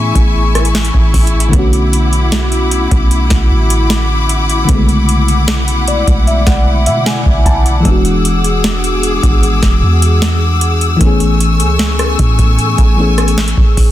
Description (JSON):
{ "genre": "contemporary R&B", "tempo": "76 BPM", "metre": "4/4", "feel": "straight", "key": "B dorian", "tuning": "A4 = 442 Hz", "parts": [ { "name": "mellow FM electric piano", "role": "accompaniment", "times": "0.0-13.9 s", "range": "C#3 to A5", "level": "-16 LUFS", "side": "left 2 dB", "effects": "chorus" }, { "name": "clear studio string section", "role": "sustained chords", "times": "0.0-13.9 s", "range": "A3 to E6", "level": "-18 LUFS", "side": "left 3 dB", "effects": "none" }, { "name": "soft 808-style bass", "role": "bass", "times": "0.0-13.9 s", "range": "E1 to B2", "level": "-14 LUFS", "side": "equal", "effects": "none" }, { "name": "booming analog drum machine", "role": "drums", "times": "0.2-13.9 s", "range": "hi-hat, kick drum, rim click, snare drum", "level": "-13 LUFS", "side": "equal", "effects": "overdrive" } ], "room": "digital ambience", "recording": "dense, heavily limited modern master", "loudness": "-9 LUFS", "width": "side -13 dB against mid", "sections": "0.0-13.9 A section", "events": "FM electric piano fill 5.5-7.9", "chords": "0.0 Amaj7; 1.5 Bm7; 7.9 E9; 11.0 Amaj7" }